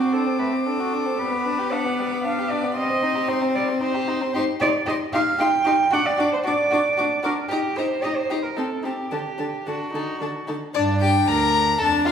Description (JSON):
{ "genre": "quick classical-period movement for string quartet", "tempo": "114 BPM", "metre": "3/4", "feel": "straight", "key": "G minor from 4.3 s", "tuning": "A4 = 441 Hz", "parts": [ { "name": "rich violin", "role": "melody", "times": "0.0-12.1 s", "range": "D5 to D6", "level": "-28 LUFS", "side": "left 6 dB", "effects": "none" }, { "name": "warm violin", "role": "second line", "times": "0.0-12.1 s", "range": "G3 to Bb4", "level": "-27 LUFS", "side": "left 2 dB", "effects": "none" }, { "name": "warm viola", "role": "accompaniment", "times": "0.0-12.1 s", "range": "D3 to Eb4", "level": "-25 LUFS", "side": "left 1 dB", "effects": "none" }, { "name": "rich cello", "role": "bass", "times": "0.0-12.1 s", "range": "D2 to G5", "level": "-24 LUFS", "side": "right 3 dB", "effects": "none" } ], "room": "wet recital hall reverb, RT60 1.6 s", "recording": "heard from further back in the room", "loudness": "-20 LUFS", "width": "side -8 dB against mid", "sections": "0.0-10.8 A section; 10.8-12.1 B section", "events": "none", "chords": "0.0 D7; 1.2 G; 2.8 Cm/G; 4.3 Cm/Eb; 5.9 D; 7.5 Eb; 8.6 Adim/C; 9.1 D; 10.8 Gm" }